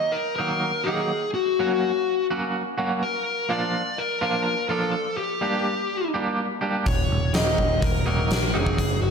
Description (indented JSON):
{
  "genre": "quiet-loud alternative rock",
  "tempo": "125 BPM",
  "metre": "4/4",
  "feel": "straight",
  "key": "Eb minor",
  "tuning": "A4 = 443 Hz",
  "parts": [
    { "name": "dark smooth lead guitar", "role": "melody", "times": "0.0-9.1 s", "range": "Gb4 to Eb5", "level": "-25 LUFS", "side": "left 3 dB", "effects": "overdrive, slapback echo" },
    { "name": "twangy electric guitar", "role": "arpeggios", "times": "0.4-8.8 s", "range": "Eb3 to G4", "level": "-27 LUFS", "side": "right 2 dB", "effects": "tremolo, slapback echo" },
    { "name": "growling picked electric bass", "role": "bass", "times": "6.9-9.1 s", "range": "Eb1 to Bb1", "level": "-25 LUFS", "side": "equal", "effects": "overdrive" },
    { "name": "huge arena drum kit", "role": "drums", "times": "6.9-8.9 s", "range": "hi-hat, kick drum, snare drum", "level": "-24 LUFS", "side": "equal", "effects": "none" }
  ],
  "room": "moderate lush hall reverb, RT60 2.4 s",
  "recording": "big arena sound",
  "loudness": "-22 LUFS",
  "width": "side -6 dB against mid",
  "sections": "0.0-9.1 A section",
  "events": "none",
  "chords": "0.0 Ebm; 1.1 Gb; 3.0 Bb; 4.9 Gm; 6.9 Ebm"
}